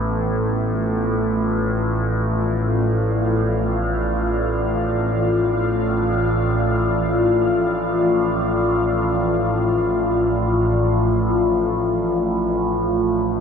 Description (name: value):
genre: dark ambient drone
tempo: free time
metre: none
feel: none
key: unclear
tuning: A4 = 440 Hz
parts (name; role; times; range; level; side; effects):
- deep dark ambient pad; sustained chords; 0.0-13.4 s; A3 to F5; -20 LUFS; left 1 dB; chorus, built-in reverb
- overtone-sweeping drone; drone; 0.0-13.4 s; A1 to A2; -21 LUFS; equal; chorus, built-in reverb, phaser
- bronze singing bowl; texture; 0.0-13.4 s; B3 to B4; -37 LUFS; right 4 dB; none
room: wet plate reverb, RT60 3.7 s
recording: none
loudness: -18 LUFS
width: side -7 dB against mid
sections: 0.0-13.4 A section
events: none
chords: 0.0 Dm/A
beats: free time